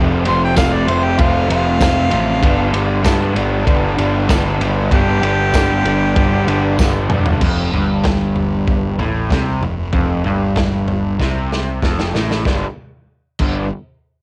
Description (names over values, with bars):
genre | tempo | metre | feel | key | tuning
garage rock duo or trio | 96 BPM | 4/4 | straight | unclear | A4 = 440 Hz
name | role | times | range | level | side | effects
crunchy overdriven guitar | riff | 0.0-13.7 s | F2 to D4 | -21 LUFS | equal | cassette tape
fuzz picked electric bass | bass | 0.0-13.7 s | E1 to G2 | -22 LUFS | equal | overdrive
clear harmonica | melody | 0.3-6.8 s | F4 to C6 | -22 LUFS | equal | overdrive, cassette tape
crunchy breakbeat drum kit | drums | 0.3-13.5 s | crash cymbal, kick drum, ride cymbal, snare drum, toms | -21 LUFS | equal | cassette tape
tambourine | percussion | 0.6-6.9 s | none | -38 LUFS | equal | none
room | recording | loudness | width
little or no reverb | home recording on cassette | -16 LUFS | mono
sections
0.0-7.4 A section; 7.4-12.5 B section; 12.5-14.2 C section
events
drum fill 6.8-7.4, 11.2-12.5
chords
0.0 F; 2.4 G; 7.4 F5; 12.5 G